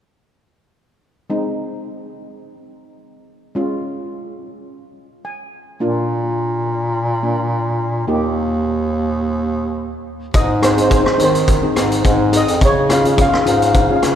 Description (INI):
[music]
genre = calypso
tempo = 106 BPM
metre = 4/4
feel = swing 54% on 16ths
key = Ab major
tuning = A4 = 439 Hz
[part]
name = steel pan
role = accompaniment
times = 1.3-14.2 s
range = Ab3 to Ab5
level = -22 LUFS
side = left 1 dB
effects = none
[part]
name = bright bass clarinet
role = bass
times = 5.8-14.2 s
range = Eb2 to Eb3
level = -18 LUFS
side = equal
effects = none
[part]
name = vintage drum kit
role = drums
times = 10.3-14.2 s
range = hi-hat, kick drum, rim click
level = -17 LUFS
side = equal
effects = none
[part]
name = steel pan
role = melody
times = 10.4-14.2 s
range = C5 to F5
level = -18 LUFS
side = equal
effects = none
[sound]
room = moderate cathedral reverb, RT60 4.3 s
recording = recorded in a church or concert hall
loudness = -14 LUFS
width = side -10 dB against mid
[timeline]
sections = 1.3-10.3 A section; 10.3-14.2 B section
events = steel pan fill 5.0-5.8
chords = 1.3 Ab; 3.6 Db; 5.8 Bb; 8.1 Eb; 10.3 Ab; 12.6 Db